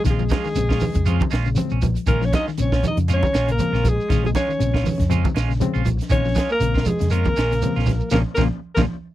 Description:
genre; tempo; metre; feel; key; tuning
afrobeat; 119 BPM; 4/4; swing 56% on 16ths; Bb minor; A4 = 440 Hz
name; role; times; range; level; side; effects
warm alto saxophone; melody; 0.0-8.8 s; Ab4 to Eb5; -25 LUFS; left 2 dB; none
trombone with bucket mute; second line; 0.0-8.8 s; Ab3 to Eb4; -30 LUFS; right 4 dB; none
bright reed electric piano; accompaniment; 0.0-8.8 s; Db3 to C4; -28 LUFS; left 10 dB; fast tremolo
clean electric guitar; arpeggios; 0.0-8.8 s; Bb2 to F3; -28 LUFS; left 7 dB; analog chorus, slapback echo
shekere; percussion; 0.0-8.9 s; none; -30 LUFS; right 2 dB; none
clean electric guitar; stabs; 0.1-8.8 s; Ab3 to F4; -30 LUFS; right 11 dB; vibrato effect
fingered electric bass; bass; 0.1-8.9 s; Bb1 to F2; -22 LUFS; equal; none
compact cocktail drum kit; drums; 0.1-8.9 s; hi-hat, kick drum, snare drum; -24 LUFS; equal; none
congas; percussion; 0.2-8.9 s; none; -26 LUFS; right 4 dB; none
room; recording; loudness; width
little or no reverb; dry, close 1970s-style studio recording; -18 LUFS; side -14 dB against mid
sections
0.0-9.1 A section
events
band accent 8.1-9.1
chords
0.0 Bbm7

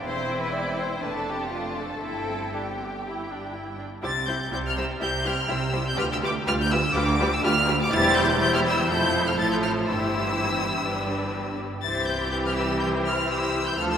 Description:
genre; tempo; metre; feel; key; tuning
quick classical-period movement for string orchestra; 123 BPM; 4/4; straight; C major; A4 = 440 Hz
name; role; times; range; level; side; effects
clear chamber violin section; melody; 0.0-14.0 s; G5 to A6; -27 LUFS; left 1 dB; none
rich chamber viola section; accompaniment; 0.0-14.0 s; E3 to G4; -28 LUFS; equal; none
rich chamber double bass section; bass; 0.0-14.0 s; E1 to D2; -33 LUFS; right 2 dB; none
warm chamber cello section; bass; 0.0-14.0 s; C2 to C3; -31 LUFS; right 2 dB; none
rich chamber violin section; second line; 0.1-14.0 s; E4 to D5; -30 LUFS; left 2 dB; none
room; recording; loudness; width
wet church reverb, RT60 3.4 s; none; -22 LUFS; side -8 dB against mid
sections
0.0-4.0 A section; 4.0-14.0 B section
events
none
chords
0.1 C/E; 1.0 Dm/F; 2.0 C/G; 3.0 G5; 4.0 C; 6.0 G7/D; 7.9 C/E; 8.9 Fmaj7; 9.9 C/G; 10.9 G; 11.8 C

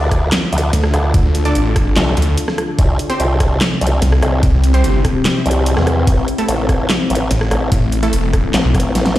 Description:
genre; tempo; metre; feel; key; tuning
heavy wobble dubstep; 146 BPM; 4/4; half-time; unclear; A4 = 439 Hz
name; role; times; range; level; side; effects
evolving wavetable pad; sustained chords; 0.0-9.2 s; C3 to A4; -21 LUFS; left 2 dB; phaser, built-in reverb, sidechain pumping
formant-sweep wobble bass; bass; 0.0-9.2 s; A1 to E2; -16 LUFS; equal; chorus, overdrive
dubstep drum kit; drums; 0.1-9.2 s; handclaps, hi-hat, rim click, snare drum; -20 LUFS; equal; none
electronic kick drum; drums; 0.1-8.8 s; none; -16 LUFS; equal; none
snarling distorted saw bass; bass; 0.7-8.7 s; E1 to D2; -14 LUFS; equal; distortion, overdrive
orchestra-hit-like synth stab; stabs; 1.5-8.1 s; A3 to D5; -25 LUFS; right 2 dB; built-in reverb, dub echo
room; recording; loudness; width
light reverb, digital ambience; played on a big sound system in a bare room, stone room reverb; -12 LUFS; side -14 dB against mid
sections
0.0-9.2 A section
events
drum fill 8.9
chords
0.0 Dm; 2.8 C; 6.1 Am

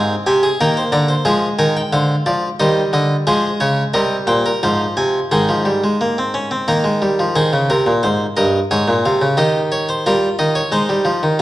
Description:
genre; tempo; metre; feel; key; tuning
classical, baroque-style 4-part fugue for harpsichord; 89 BPM; 3/4; straight; Ab major from 3.3 s; A4 = 438 Hz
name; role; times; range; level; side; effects
harpsichord; solo; 0.0-11.4 s; G2 to C6; -14 LUFS; equal; none
room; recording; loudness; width
moderate recital hall reverb, RT60 1.7 s; dark, warm production, vinyl crackle, nothing above 11.0 kHz; -14 LUFS; side -15 dB against mid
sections
0.0-7.4 A section; 7.4-11.4 B section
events
none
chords
0.0 Fm; 0.6 Eb; 1.3 Ddim; 2.6 Cm/Eb; 3.3 Ebsus4 (rootless); 6.7 Eb; 7.4 Ab; 8.7 Db/Ab; 9.4 Eb7; 10.7 Ab

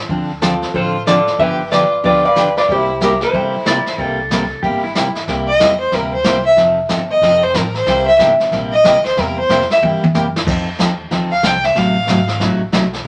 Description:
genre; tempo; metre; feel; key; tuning
country, western swing; 185 BPM; 4/4; swing 62% on 8ths; C mixolydian; A4 = 440 Hz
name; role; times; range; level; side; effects
picked steel-string acoustic guitar; accompaniment; 0.1-13.1 s; C3 to A4; -21 LUFS; equal; none
upright bass; bass; 0.1-13.0 s; F1 to G2; -31 LUFS; equal; none
vintage brush drum kit; drums; 0.1-13.1 s; brushed snare drum, crash cymbal, hi-hat, kick drum, snare drum, toms; -23 LUFS; equal; none
vintage hollow-body jazz guitar; melody; 0.4-4.5 s; F4 to F5; -17 LUFS; equal; none
clear fiddle; second line; 0.4-12.4 s; C4 to G5; -17 LUFS; equal; none
pedal steel guitar; second line; 3.7-5.2 s; E4 to D5; -23 LUFS; equal; none
room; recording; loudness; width
wet studio reverb, RT60 0.5 s; none; -15 LUFS; mono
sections
0.0-5.3 A section; 5.3-13.1 B section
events
fiddle solo 5.3-13.1; drum fill 9.8-10.5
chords
0.1 Dm7; 1.4 G7; 2.7 C7; 6.6 F7; 7.9 C7; 10.5 F7; 11.8 F#dim7

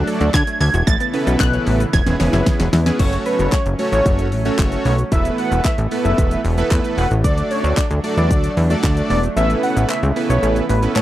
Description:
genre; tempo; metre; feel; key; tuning
dance-pop; 113 BPM; 4/4; straight; F# minor; A4 = 440 Hz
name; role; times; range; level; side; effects
analog pluck; melody; 0.0-2.4 s; F#6 to A6; -23 LUFS; right 2 dB; chorus, tape echo
big bright polysynth; accompaniment; 0.0-11.0 s; A3 to D5; -22 LUFS; right 2 dB; sidechain pumping
soft supersaw; sustained chords; 0.0-11.0 s; C#3 to E4; -27 LUFS; equal; sidechain pumping
plucky analog bass; bass; 0.0-11.0 s; E1 to D3; -18 LUFS; equal; sidechain pumping
wide unison pluck; arpeggios; 0.1-3.0 s; F#3 to E5; -29 LUFS; left 2 dB; sidechain pumping, tape echo
pop drum kit; drums; 0.1-11.0 s; crash cymbal, handclaps, hi-hat, kick drum, shaker, snare drum; -20 LUFS; equal; none
wide unison lead; melody; 3.0-11.0 s; B4 to F#5; -23 LUFS; equal; sidechain pumping
room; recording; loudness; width
little or no reverb; dry, close 1970s-style studio recording; -15 LUFS; side -14 dB against mid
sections
0.0-3.0 A section; 3.0-11.0 B section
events
drum fill 1.9-3.0; kick muted 9.4-11.0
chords
0.0 D; 0.9 Aadd9; 1.9 E6; 3.0 F#m; 5.1 Esus4; 7.2 D; 9.4 Aadd9

